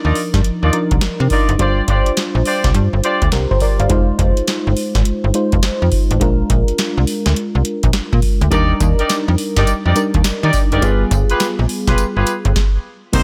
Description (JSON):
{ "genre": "R&B, new jack swing", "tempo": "104 BPM", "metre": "4/4", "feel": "swing 64% on 16ths", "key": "unclear", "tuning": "A4 = 441 Hz", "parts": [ { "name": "FM electric piano with tremolo", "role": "accompaniment", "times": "0.0-13.2 s", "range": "F3 to F5", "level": "-22 LUFS", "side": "equal", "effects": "none" }, { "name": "warm horn section", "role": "stabs", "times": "0.0-3.3, 8.5-13.2 s", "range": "Eb4 to D5", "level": "-23 LUFS", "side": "equal", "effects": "digital delay" }, { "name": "slap-like FM bass", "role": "bass", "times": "0.0-13.2 s", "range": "F1 to Eb3", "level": "-18 LUFS", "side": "equal", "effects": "none" }, { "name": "booming analog drum machine", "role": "drums", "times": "0.2-13.2 s", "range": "crash cymbal, hi-hat, kick drum, snare drum, tambourine", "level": "-20 LUFS", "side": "equal", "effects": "none" } ], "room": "little or no reverb", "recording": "none", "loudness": "-16 LUFS", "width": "mono", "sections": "0.0-3.9 A section; 3.9-13.1 B section", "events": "stop 12.6-13.1", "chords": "0.0 Cm11 (rootless); 1.6 G7sus4; 3.9 Fm7; 6.2 Bb7; 8.5 Ebmaj7; 10.8 G7b9" }